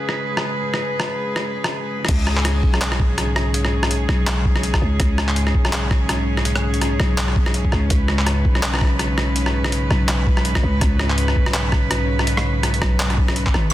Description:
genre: half-time drum and bass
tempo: 165 BPM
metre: 4/4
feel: swing 57% on 16ths, half-time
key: unclear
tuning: A4 = 440 Hz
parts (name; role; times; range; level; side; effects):
- rich studio cello section; sustained chords; 0.0-13.7 s; G#2 to B4; -24 LUFS; equal; vintage 12-bit sampler grit, sidechain pumping
- boom bap sampler-style drum kit; drums; 0.1-13.6 s; crash cymbal, handclaps, hi-hat, rim click; -23 LUFS; equal; soft clipping on snare
- growling 808-style bass; bass; 2.1-13.7 s; G#1 to C#2; -20 LUFS; equal; none
- electronic kick drum; drums; 2.1-13.5 s; none; -19 LUFS; equal; none
room: light reverb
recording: dense, heavily limited modern master, low-pass filter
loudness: -17 LUFS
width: side -14 dB against mid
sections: 0.0-2.1 A section; 2.1-13.7 B section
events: drop 2.1-13.7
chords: 0.0 C#5

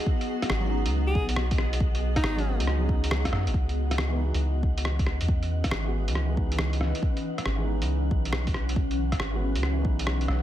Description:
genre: future garage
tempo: 138 BPM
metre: 4/4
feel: swing 66% on 16ths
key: C# minor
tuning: A4 = 440 Hz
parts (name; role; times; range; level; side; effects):
- felt-muted upright piano; accompaniment; 0.0-10.4 s; E3 to G#4; -36 LUFS; right 2 dB; sidechain pumping, ping-pong delay
- granular cloud pad; sustained chords; 0.0-10.4 s; E3 to D#5; -34 LUFS; left 1 dB; built-in reverb, sidechain pumping
- wind-like tuned noise texture; texture; 0.0-10.4 s; F#5; -42 LUFS; left 2 dB; built-in reverb
- electronic kick drum; drums; 0.1-10.0 s; none; -27 LUFS; equal; none
- lo-fi sampler-style drum kit; drums; 0.2-10.4 s; hi-hat, rim click; -32 LUFS; equal; none
- soft dub sub bass; bass; 0.5-10.4 s; G#1 to F#2; -27 LUFS; equal; sidechain pumping
- bright alto saxophone; melody; 1.1-2.6 s; D#4 to G#4; -36 LUFS; equal; digital delay
room: digital ambience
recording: none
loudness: -24 LUFS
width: side -12 dB against mid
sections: 0.0-3.5 A section; 3.5-10.4 B section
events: none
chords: 0.0 B6; 3.5 C#m9

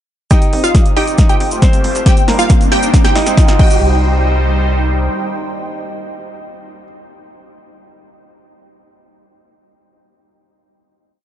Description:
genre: uplifting trance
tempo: 137 BPM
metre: 4/4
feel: straight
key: C minor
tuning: A4 = 440 Hz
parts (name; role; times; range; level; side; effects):
- wide unison pluck; melody; 0.3-6.8 s; F4 to G5; -21 LUFS; right 1 dB; sidechain pumping, ping-pong delay
- bright concert grand piano; second line; 0.3-6.8 s; Bb3 to Eb5; -22 LUFS; equal; dub echo
- plucky unison lead; second line; 0.3-6.8 s; F5 to G5; -24 LUFS; equal; phaser, wide subtle chorus, sidechain pumping, ping-pong delay
- electronic kick drum; drums; 0.3-3.7 s; none; -10 LUFS; equal; overdrive
- punchy analog drum machine; drums; 0.3-3.7 s; crash cymbal, hi-hat, snare drum; -24 LUFS; equal; overdrive, high-pass filter on snare, high-pass filter on hats, high-pass filter on cymbals
- cabasa; percussion; 0.3-3.8 s; none; -27 LUFS; right 2 dB; none
- riser; sound effects; 1.4-3.8 s; none; -24 LUFS; right 2 dB; none
- filtered supersaw swell; sustained chords; 0.5-6.8 s; G3 to D5; -22 LUFS; right 1 dB; sidechain pumping
- tight sequencer bass; bass; 0.5-5.1 s; G1 to F2; -16 LUFS; equal; sidechain pumping, high-pass filter
room: light reverb, digital ambience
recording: dark, warm production, nothing above 10.4 kHz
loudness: -10 LUFS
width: side -11 dB against mid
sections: 0.3-3.8 build; 3.8-7.3 final hit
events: build-up 0.3-3.8; drum fill 0.3-3.8; riser 1.4-3.8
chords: 0.3 Cmadd9; 1.2 Fadd9; 2.1 Cmadd9; 2.9 Ab; 3.6 Cm

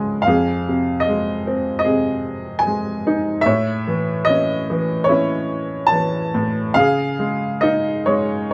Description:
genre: classical, lyrical solo piano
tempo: 67-78 BPM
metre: 4/4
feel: rubato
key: unclear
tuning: A4 = 442 Hz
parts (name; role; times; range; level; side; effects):
- clear upright piano; solo; 0.0-8.5 s; Db2 to A5; -19 LUFS; equal; none
room: light reverb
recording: none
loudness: -19 LUFS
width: mono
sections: 0.0-8.5 A section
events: none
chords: 0.3 Fm7; 3.5 A; 6.8 Dbsus2

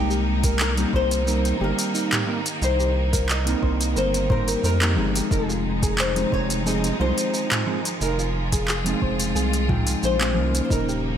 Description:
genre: sunset chillout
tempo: 89 BPM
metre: 4/4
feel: straight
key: F minor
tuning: A4 = 441 Hz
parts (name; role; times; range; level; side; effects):
- flamenco guitar; melody; 0.0-11.2 s; G4 to Eb5; -28 LUFS; left 2 dB; analog chorus, digital delay
- mellow electric guitar; accompaniment; 0.0-11.2 s; F3 to G5; -26 LUFS; moving between left 6 dB and right 4 dB; auto-pan, digital delay
- clear symphonic string section; sustained chords; 0.0-11.2 s; Db3 to F4; -31 LUFS; equal; none
- soft round pluck; arpeggios; 0.0-11.0 s; Eb4 to C5; -32 LUFS; right 3 dB; analog chorus, digital delay
- round analog bass; bass; 0.0-11.2 s; Eb1 to F2; -24 LUFS; right 1 dB; tube saturation
- smooth R&B drum kit; drums; 0.1-11.0 s; handclaps, hi-hat, shaker, toms; -27 LUFS; right 1 dB; overdrive, small room ambience
- electronic kick drum; drums; 0.4-10.8 s; none; -25 LUFS; equal; overdrive, small room ambience
room: light reverb, digital ambience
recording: bright 1980s-style digital production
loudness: -20 LUFS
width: side -9 dB against mid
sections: 0.0-11.2 A section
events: none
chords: 0.0 Cm7; 5.3 Fm7

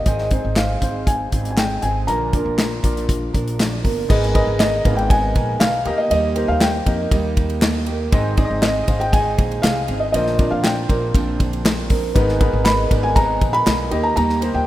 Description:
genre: piano-driven pop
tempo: 119 BPM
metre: 4/4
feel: straight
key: unclear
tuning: A4 = 440 Hz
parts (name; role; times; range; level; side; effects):
- felt-muted upright piano; melody; 0.0-14.7 s; Eb5 to Cb6; -22 LUFS; equal; none
- warm baby grand piano; accompaniment; 0.0-14.7 s; Ab2 to F5; -25 LUFS; left 2 dB; none
- picked steel-string acoustic guitar; riff; 0.0-14.7 s; Ab2 to Bb4; -26 LUFS; right 6 dB; none
- upright bass; bass; 0.0-14.7 s; G1 to F2; -23 LUFS; equal; none
- modern studio drum kit; drums; 0.1-14.5 s; crash cymbal, handclaps, hi-hat, kick drum, ride cymbal, snare drum; -20 LUFS; equal; none
room: light reverb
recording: rough home demo mix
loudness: -16 LUFS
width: side -14 dB against mid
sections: 0.0-4.1 A section; 4.1-14.7 B section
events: none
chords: 0.1 Ab; 2.1 Bb; 4.1 Abmadd9; 5.9 Eb; 8.1 Ab; 10.1 Bbadd9; 12.2 Abmadd9; 13.9 Eb

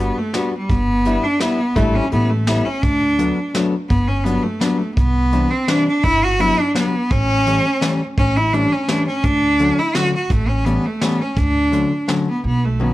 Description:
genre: musette waltz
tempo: 169 BPM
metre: 3/4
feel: swing 54% on 8ths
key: D major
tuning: A4 = 435 Hz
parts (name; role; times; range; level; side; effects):
- rich cello; melody; 0.0-12.9 s; G3 to F#4; -18 LUFS; equal; none
- archtop guitar, miked and amplified; accompaniment; 0.0-12.9 s; D3 to F#4; -21 LUFS; left 3 dB; none
- upright bass; bass; 0.0-12.9 s; G1 to D2; -21 LUFS; equal; none
- vintage brush drum kit; drums; 0.3-12.2 s; hi-hat, kick drum, snare drum; -22 LUFS; equal; none
room: light reverb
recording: close, detailed microphones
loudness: -15 LUFS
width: side -16 dB against mid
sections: 0.0-12.4 A section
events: none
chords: 0.0 Gmaj7; 0.7 Em7/G; 1.8 A7sus4; 2.1 A7; 2.8 D6; 3.9 Gmaj7; 5.0 Cadd9; 6.0 Gmaj7; 7.1 A7; 9.2 Dmaj7; 10.3 A7; 11.4 Dmaj7

